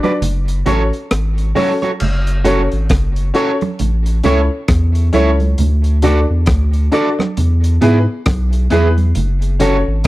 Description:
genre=roots reggae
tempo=67 BPM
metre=4/4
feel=swing 60% on 16ths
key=F# minor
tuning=A4 = 442 Hz
part: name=electric guitar at the edge of break-up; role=accompaniment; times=0.0-9.8 s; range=B3 to D5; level=-20 LUFS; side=right 4 dB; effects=none
part: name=warm concert grand piano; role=stabs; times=0.0-9.8 s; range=B3 to D5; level=-18 LUFS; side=left 2 dB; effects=none
part: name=crunchy breakbeat drum kit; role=drums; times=0.0-10.1 s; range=crash cymbal, hi-hat, kick drum, rim click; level=-19 LUFS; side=equal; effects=none
part: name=congas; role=percussion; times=0.0-9.9 s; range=none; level=-23 LUFS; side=right 5 dB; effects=none
part: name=warm sub bass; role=bass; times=0.2-10.1 s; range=F#1 to G#2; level=-14 LUFS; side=equal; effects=none
room=studio reverb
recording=dry, close 1970s-style studio recording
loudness=-12 LUFS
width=side -17 dB against mid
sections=0.0-2.0 A section; 2.0-10.1 B section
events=break 0.0-2.0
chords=0.2 F#m; 3.8 A; 5.6 D; 7.4 E; 9.2 F#m

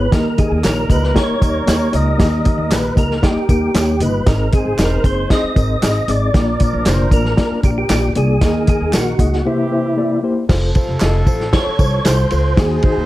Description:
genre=uptempo 1960s-style soul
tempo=116 BPM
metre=4/4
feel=straight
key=unclear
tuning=A4 = 440 Hz
part: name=percussive tonewheel organ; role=melody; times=0.0-13.1 s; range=E4 to D#5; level=-21 LUFS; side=right 1 dB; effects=chorus vibrato, fast rotary speaker
part: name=mellow reed electric piano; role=accompaniment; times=0.0-13.1 s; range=G#2 to D#5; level=-20 LUFS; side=left 3 dB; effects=fast tremolo
part: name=upright bass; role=bass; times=0.0-13.1 s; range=E1 to D#2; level=-19 LUFS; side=equal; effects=none
part: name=dark horn section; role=second line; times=0.1-13.1 s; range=C3 to C5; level=-27 LUFS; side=right 1 dB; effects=none
part: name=warm soul drum kit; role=drums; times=0.1-13.0 s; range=crash cymbal, hi-hat, kick drum, ride cymbal, snare drum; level=-16 LUFS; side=equal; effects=none
part: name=tambourine and handclaps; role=percussion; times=0.1-12.7 s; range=none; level=-30 LUFS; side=right 3 dB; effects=none
room=light reverb, studio ambience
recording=dark, warm production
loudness=-13 LUFS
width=side -16 dB against mid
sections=0.0-10.5 A section; 10.5-13.1 A section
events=break 9.5-10.5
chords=0.1 D#; 4.3 G#; 6.3 A#; 8.4 D#sus4; 9.5 C7; 10.5 F

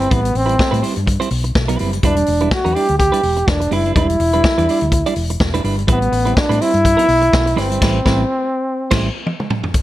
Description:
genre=disco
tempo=125 BPM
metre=4/4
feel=swing 56% on 16ths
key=unclear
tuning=A4 = 442 Hz
part: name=clear trombone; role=melody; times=0.0-9.3 s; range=B3 to G4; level=-17 LUFS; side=equal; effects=none
part: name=clean electric guitar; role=accompaniment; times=0.0-9.1 s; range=G3 to D5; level=-22 LUFS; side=right 5 dB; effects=none
part: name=hollow-body short-scale fingered electric bass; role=bass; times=0.0-9.1 s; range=E1 to A2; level=-20 LUFS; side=equal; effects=none
part: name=vintage drum kit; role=drums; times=0.0-9.8 s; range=crash cymbal, hi-hat, kick drum, snare drum, toms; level=-19 LUFS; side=left 1 dB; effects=gated reverb
room=small room reverb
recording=none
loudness=-14 LUFS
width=side -14 dB against mid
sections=0.0-9.8 A section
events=band accent 7.8-9.8; drum fill 9.3-9.8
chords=0.0 Am9; 2.0 Em7; 5.9 Am9

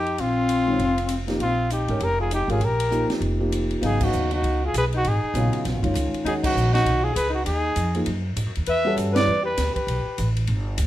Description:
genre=modal jazz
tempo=198 BPM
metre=4/4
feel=swing 60% on 8ths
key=Bb dorian, G# dorian from 3.8 s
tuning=A4 = 441 Hz
part: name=mellow trumpet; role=melody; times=0.0-10.3 s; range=F4 to E5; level=-25 LUFS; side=right 1 dB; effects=none
part: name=breathy alto saxophone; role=second line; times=0.0-10.3 s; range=C4 to B4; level=-28 LUFS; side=left 4 dB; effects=none
part: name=upright bass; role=bass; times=0.0-10.9 s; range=F1 to G#2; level=-25 LUFS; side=equal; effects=none
part: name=open jazz drum kit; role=drums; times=0.1-10.9 s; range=crash cymbal, hi-hat, kick drum, ride cymbal, snare drum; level=-32 LUFS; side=equal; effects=none
part: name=warm concert grand piano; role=accompaniment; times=0.7-9.3 s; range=C#3 to E#5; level=-27 LUFS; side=equal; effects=none
room=moderate club reverb, RT60 0.8 s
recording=none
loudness=-20 LUFS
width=side -13 dB against mid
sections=0.0-3.8 A section; 3.8-10.9 B section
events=band accent 4.0, 6.4, 9.1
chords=0.0 Bb13sus4; 3.8 G#m9; 8.7 Em9

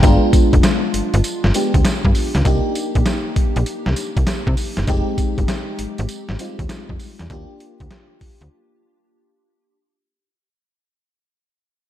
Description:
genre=R&B, new jack swing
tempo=99 BPM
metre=4/4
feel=swing 66% on 16ths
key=unclear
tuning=A4 = 441 Hz
part: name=FM electric piano with soft pad layer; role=accompaniment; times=0.0-9.7 s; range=G3 to G4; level=-22 LUFS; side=left 1 dB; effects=chorus
part: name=slap-like FM bass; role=bass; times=0.0-8.5 s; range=F1 to C3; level=-19 LUFS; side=equal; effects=none
part: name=boom bap sampler-style drum kit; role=drums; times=0.0-8.5 s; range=hi-hat, kick drum, snare drum, tambourine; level=-18 LUFS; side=equal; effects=none
room=moderate recital hall reverb, RT60 1.9 s, digital ambience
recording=big arena sound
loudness=-16 LUFS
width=side -12 dB against mid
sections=0.0-9.7 A section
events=fade-out 0.0-9.7; break 8.5-9.7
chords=0.0 G7b9; 2.5 Cm9; 4.9 Fm9; 7.3 Ebmaj9 (rootless)

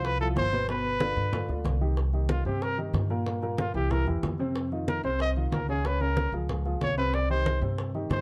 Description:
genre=Afro-Cuban jazz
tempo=186 BPM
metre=4/4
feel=straight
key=C minor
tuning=A4 = 444 Hz
part: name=clear trumpet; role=melody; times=0.0-8.2 s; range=F4 to Eb5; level=-32 LUFS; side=equal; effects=plate reverb
part: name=dark baby grand piano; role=accompaniment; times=0.0-8.2 s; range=Bb2 to Db5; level=-35 LUFS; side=equal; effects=none
part: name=upright bass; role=bass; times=0.0-8.2 s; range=G1 to G2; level=-32 LUFS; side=equal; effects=none
part: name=bongos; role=percussion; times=0.0-8.2 s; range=none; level=-41 LUFS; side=equal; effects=none
part: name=congas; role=percussion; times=0.0-8.2 s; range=none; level=-37 LUFS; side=equal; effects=none
room=light reverb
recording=dark, warm production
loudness=-28 LUFS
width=mono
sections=0.0-2.0 A section; 2.0-8.2 B section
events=trumpet solo 2.0-8.2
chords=0.0 F5; 0.7 G7; 2.0 Cm7; 3.3 C7; 3.9 C; 4.6 F5; 5.8 Db6; 7.1 Cm

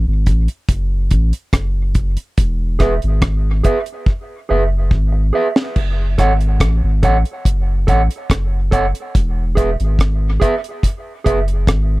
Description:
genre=dub reggae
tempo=71 BPM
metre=4/4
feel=straight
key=F# minor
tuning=A4 = 439 Hz
part: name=soft dub sub bass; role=bass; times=0.0-12.0 s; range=E1 to A1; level=-16 LUFS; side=equal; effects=none
part: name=deep reggae drum kit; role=drums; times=0.3-11.9 s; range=crash cymbal, hi-hat, kick drum, rim click, snare drum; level=-15 LUFS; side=equal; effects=none
part: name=mellow electric guitar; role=accompaniment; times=2.8-11.4 s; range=G#4 to F#5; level=-20 LUFS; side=right 2 dB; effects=dub echo
room=little or no reverb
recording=dry, close 1970s-style studio recording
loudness=-14 LUFS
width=side -20 dB against mid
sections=0.0-5.8 A section; 5.8-12.0 B section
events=break 0.0-2.4; drum fill 4.1-5.8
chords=0.0 F#m; 2.4 E; 5.8 F#m; 9.1 E

